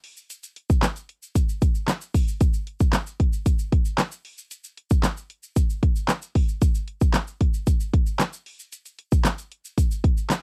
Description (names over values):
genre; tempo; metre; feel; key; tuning
pop; 114 BPM; 4/4; straight; none; none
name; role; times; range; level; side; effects
pop drum kit; drums; 0.0-10.4 s; handclaps, hi-hat, kick drum, snare drum; -22 LUFS; equal; none
tube shaker; percussion; 0.2-10.4 s; none; -43 LUFS; equal; none
room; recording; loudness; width
little or no reverb; dry, close 1970s-style studio recording; -24 LUFS; mono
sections
0.0-10.4 A section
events
none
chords
none